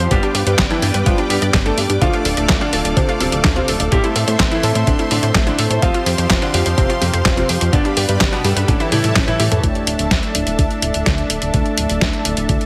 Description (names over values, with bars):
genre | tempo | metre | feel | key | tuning
italo disco | 126 BPM | 4/4 | straight | unclear | A4 = 440 Hz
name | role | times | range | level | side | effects
clear grand piano | melody | 0.0-9.6 s | B2 to A4 | -24 LUFS | equal | tape echo
lush unison pad | sustained chords | 0.0-12.7 s | D4 to D6 | -26 LUFS | equal | chorus
analog pluck | arpeggios | 0.0-9.6 s | B3 to D5 | -28 LUFS | equal | chorus, digital delay
clean electric guitar | stabs | 0.0-12.7 s | G3 to F5 | -28 LUFS | equal | subtle chorus, low-pass filter
chorused synth bass | bass | 0.0-12.6 s | D1 to A2 | -22 LUFS | equal | tube saturation
detuned 8-bit digital drum machine | drums | 0.1-12.7 s | handclaps, hi-hat, snare drum, toms | -22 LUFS | equal | none
electronic kick drum | drums | 0.1-12.6 s | none | -21 LUFS | equal | none
room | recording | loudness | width
light reverb, digital ambience | heavily compressed radio sound | -16 LUFS | mono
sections
0.0-9.6 A section; 9.6-12.7 B section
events
drum fill 8.9-9.6; filter sweep on clean electric guitar 9.6-12.7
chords
0.1 G; 2.0 Dm; 3.9 Am; 5.8 Fsus2; 7.7 G; 8.7 A7; 9.6 Dsus2